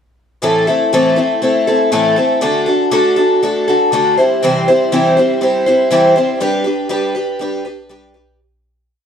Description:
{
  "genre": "rock",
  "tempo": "120 BPM",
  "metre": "4/4",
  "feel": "straight",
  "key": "G major",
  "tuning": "A4 = 440 Hz",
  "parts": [
    { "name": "picked twelve-string acoustic guitar", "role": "solo", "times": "0.4-8.4 s", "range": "A2 to C5", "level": "-11 LUFS", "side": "left 1 dB", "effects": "none" }
  ],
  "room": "moderate echo chamber reverb, RT60 1.5 s",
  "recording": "dark, warm production, faint mains hum",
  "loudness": "-11 LUFS",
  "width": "side -8 dB against mid",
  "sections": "0.4-8.4 verse",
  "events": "fade-out 6.4-8.4",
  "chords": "0.4 Am; 2.4 D; 4.2 C; 6.4 G"
}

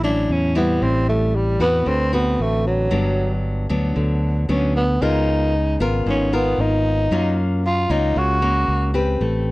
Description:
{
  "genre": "bossa nova",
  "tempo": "114 BPM",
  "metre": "4/4",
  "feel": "straight",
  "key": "unclear",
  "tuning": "A4 = 440 Hz",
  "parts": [
    { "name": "growling tenor saxophone", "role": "melody", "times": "0.0-9.0 s", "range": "F#3 to F#4", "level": "-21 LUFS", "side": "equal", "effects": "none" },
    { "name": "nylon-string guitar", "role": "accompaniment", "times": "0.0-9.5 s", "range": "G2 to B4", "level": "-23 LUFS", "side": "left 2 dB", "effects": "none" },
    { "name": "fingered electric bass", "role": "bass", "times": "0.0-9.5 s", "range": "G1 to F#2", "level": "-21 LUFS", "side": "equal", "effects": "none" }
  ],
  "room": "light reverb",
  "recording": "dry, close 1970s-style studio recording",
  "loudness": "-17 LUFS",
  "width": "side -20 dB against mid",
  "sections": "0.0-9.5 A section",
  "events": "tenor saxophone solo 0.0-9.5",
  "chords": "0.0 Dmaj9; 0.8 Am7; 1.9 D6; 2.9 Gmaj7; 5.0 C#13; 7.1 F#maj7"
}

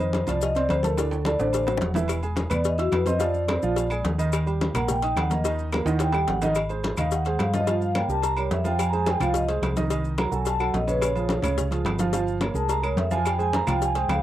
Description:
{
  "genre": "Afro-Cuban jazz",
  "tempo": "215 BPM",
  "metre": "4/4",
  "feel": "straight",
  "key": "Eb major, Ab major from 6.6 s",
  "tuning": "A4 = 442 Hz",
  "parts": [
    { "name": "vibraphone with soft mallets", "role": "melody", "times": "0.0-14.2 s", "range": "Gb4 to Bb5", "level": "-26 LUFS", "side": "equal", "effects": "none" },
    { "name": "warm baby grand piano", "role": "accompaniment", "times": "0.0-14.2 s", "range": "C#3 to E6", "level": "-28 LUFS", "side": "right 4 dB", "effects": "none" },
    { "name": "hollow-body short-scale fingered electric bass", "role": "bass", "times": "0.0-14.2 s", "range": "E1 to G2", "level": "-27 LUFS", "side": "equal", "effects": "none" },
    { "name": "agogo bells and timbales", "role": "percussion", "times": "0.0-14.2 s", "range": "none", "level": "-36 LUFS", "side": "right 3 dB", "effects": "none" },
    { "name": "maracas", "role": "percussion", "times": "0.0-14.2 s", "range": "none", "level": "-42 LUFS", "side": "left 9 dB", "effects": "none" },
    { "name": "congas", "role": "percussion", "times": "0.1-14.2 s", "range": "none", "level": "-30 LUFS", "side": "left 2 dB", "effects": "none" },
    { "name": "cowbell and bongos", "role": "percussion", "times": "0.1-14.2 s", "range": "none", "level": "-33 LUFS", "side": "left 8 dB", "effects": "none" },
    { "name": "claves", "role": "percussion", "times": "2.1-14.2 s", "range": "none", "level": "-38 LUFS", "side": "left 2 dB", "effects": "none" }
  ],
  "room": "light reverb",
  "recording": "dry, close 1970s-style studio recording",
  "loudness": "-22 LUFS",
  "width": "side -13 dB against mid",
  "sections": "0.0-6.6 A section; 6.6-14.2 A section",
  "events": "vibraphone solo 0.0-14.2; drum fill 1.0-2.1, 5.9-6.6",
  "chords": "0.0 F5; 1.0 D9; 2.1 E; 3.2 F5; 3.8 Bb7; 4.3 Eb; 6.6 Ab6; 7.7 Gm7b5; 8.2 C5; 8.8 Fm7; 9.9 Cm7b5; 10.5 Bsus2; 11.0 Bbm7; 12.1 Gm7b5; 12.7 Bbm9/C; 13.3 Fm"
}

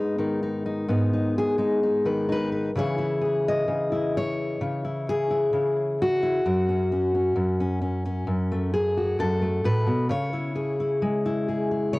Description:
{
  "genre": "folk, solo fingerstyle acoustic guitar",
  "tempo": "65 BPM",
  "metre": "4/4",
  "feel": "straight",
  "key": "C# minor",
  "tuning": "A4 = 440 Hz",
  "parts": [
    { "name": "fingerpicked steel-string acoustic guitar", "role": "solo", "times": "0.0-12.0 s", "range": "F#2 to D#5", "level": "-22 LUFS", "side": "left 1 dB", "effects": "cassette tape, tape echo" }
  ],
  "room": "moderate booth ambience, RT60 0.2 s",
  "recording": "home recording on cassette",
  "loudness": "-22 LUFS",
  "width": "side -21 dB against mid",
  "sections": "0.0-2.8 A section; 2.8-12.0 B section",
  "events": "none",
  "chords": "0.0 G#m; 2.8 C#m; 6.4 F#m; 10.1 C#m"
}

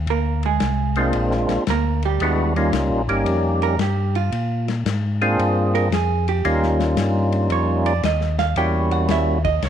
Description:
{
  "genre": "soul jazz organ trio",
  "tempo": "113 BPM",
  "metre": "4/4",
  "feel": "swing 67% on 8ths",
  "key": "unclear",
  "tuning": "A4 = 440 Hz",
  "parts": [
    { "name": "mellow tonewheel organ", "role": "bass", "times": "0.0-9.7 s", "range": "G1 to Bb2", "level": "-22 LUFS", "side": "left 1 dB", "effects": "chorus vibrato, slow rotary speaker" },
    { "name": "vintage hollow-body jazz guitar", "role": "accompaniment", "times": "0.1-9.7 s", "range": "G3 to G5", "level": "-24 LUFS", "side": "right 13 dB", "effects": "none" },
    { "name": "warm soul drum kit", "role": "drums", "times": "0.1-9.7 s", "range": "hi-hat, kick drum, ride cymbal, snare drum", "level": "-29 LUFS", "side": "left 9 dB", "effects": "none" },
    { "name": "percussive tonewheel organ", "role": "melody", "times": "1.0-9.4 s", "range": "G3 to Ab4", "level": "-20 LUFS", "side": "equal", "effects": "slow rotary speaker, overdrive, slapback echo" }
  ],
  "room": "light reverb, small room ambience",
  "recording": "1960s-style stereo with parts hard left and right",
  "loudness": "-18 LUFS",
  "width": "side -9 dB against mid",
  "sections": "0.0-9.7 A section",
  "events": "hollow-body jazz guitar solo 0.0-9.7",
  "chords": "0.0 Bb9; 2.2 Eb9; 4.3 Bb9; 6.4 Eb9; 8.6 Edim7"
}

